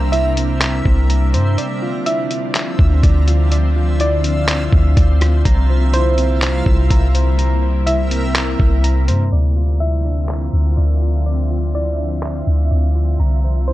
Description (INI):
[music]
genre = hip hop, atmospheric cloud-rap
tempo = 124 BPM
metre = 4/4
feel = half-time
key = D minor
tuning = A4 = 440 Hz
[part]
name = ethereal airy pad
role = sustained chords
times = 0.0-13.7 s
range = C3 to E5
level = -24 LUFS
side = equal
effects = ensemble chorus, built-in reverb, sidechain pumping
[part]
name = soft electric-piano-like synth keys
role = arpeggios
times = 0.0-13.7 s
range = C4 to Bb5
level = -27 LUFS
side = equal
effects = chorus, analog delay
[part]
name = soft 808-style bass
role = bass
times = 0.0-13.7 s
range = C2 to G2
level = -15 LUFS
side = equal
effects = none
[part]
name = backwards swelling texture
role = texture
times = 0.0-13.7 s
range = C4 to E5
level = -28 LUFS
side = right 1 dB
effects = built-in reverb
[part]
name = soft round pluck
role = melody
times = 0.1-13.7 s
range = C5 to E5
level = -25 LUFS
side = equal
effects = chorus, analog delay
[part]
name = lo-fi sampler-style drum kit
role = drums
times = 0.1-12.3 s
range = handclaps, hi-hat, kick drum, rim click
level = -17 LUFS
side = equal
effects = none
[sound]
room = little or no reverb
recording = dry, gritty hardware recording, cassette tape, low-pass filter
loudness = -14 LUFS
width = side -16 dB against mid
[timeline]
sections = 0.0-9.3 A section; 9.3-13.7 B section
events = break 1.6-2.5; filter sweep 9.3-13.7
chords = 0.0 C7; 1.6 Dm9; 5.5 C7; 9.3 Dm9; 13.2 C7